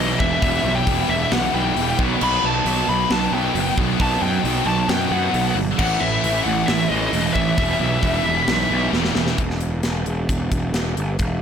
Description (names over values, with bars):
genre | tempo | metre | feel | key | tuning
heavy metal | 134 BPM | 4/4 | straight | E harmonic minor | A4 = 440 Hz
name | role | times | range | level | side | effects
high-gain lead guitar | melody | 0.0-8.9 s | D#5 to B5 | -22 LUFS | left 2 dB | distortion
distorted electric guitar | riff | 0.0-9.4 s | E2 to B3 | -26 LUFS | right 14 dB | distortion
heavy high-gain guitar | riff | 0.0-9.4 s | E2 to B3 | -28 LUFS | equal | distortion
tight distorted guitar | riff | 0.0-9.4 s | A2 to G3 | -26 LUFS | left 14 dB | distortion
fuzz picked electric bass | bass | 0.0-11.4 s | E1 to F#2 | -23 LUFS | equal | overdrive
tight metal drum kit | drums | 0.2-11.3 s | crash cymbal, hi-hat, kick drum, snare drum | -25 LUFS | equal | none
room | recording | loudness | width
light reverb | blown-out, overdriven recording, overdrive | -17 LUFS | side -8 dB against mid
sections
0.0-9.4 A section; 9.4-11.4 B section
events
half time 0.0-9.4; drum fill 8.9-9.4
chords
0.0 Em; 2.0 B; 5.8 A5; 7.6 Em; 9.4 N.C.